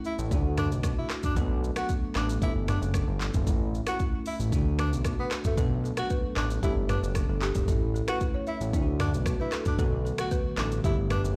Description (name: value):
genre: afrobeats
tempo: 114 BPM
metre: 4/4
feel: straight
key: B minor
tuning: A4 = 440 Hz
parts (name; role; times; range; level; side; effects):
- bell-like tine electric piano; accompaniment; 0.0-11.4 s; D3 to A4; -37 LUFS; equal; phaser
- afro-pop drum kit; drums; 0.0-11.4 s; finger snaps, handclaps, hi-hat, kick drum, rim click, shaker, toms; -32 LUFS; equal; none
- breathy tenor saxophone; melody; 0.1-11.2 s; A3 to F#4; -37 LUFS; equal; digital delay
- fat analog bass; bass; 0.2-11.4 s; E1 to D2; -31 LUFS; equal; none
- balafon; riff; 5.6-11.2 s; G4 to E5; -38 LUFS; equal; none
room: digital ambience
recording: played on a big sound system in a bare room, large studio reverb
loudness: -28 LUFS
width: mono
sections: 0.0-11.4 A section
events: none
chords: 0.3 D; 1.4 Bm7; 2.4 Gadd9; 3.5 A; 4.5 D; 5.6 Bm7; 6.6 Gadd9; 7.7 A; 8.7 D; 9.8 Bm7; 10.8 Gadd9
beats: 0.31 0.84 | 1.37 1.89 2.42 2.94 | 3.47 4.00 4.52 5.05 | 5.58 6.10 6.63 7.16 | 7.68 8.21 8.73 9.26 | 9.79 10.31 10.84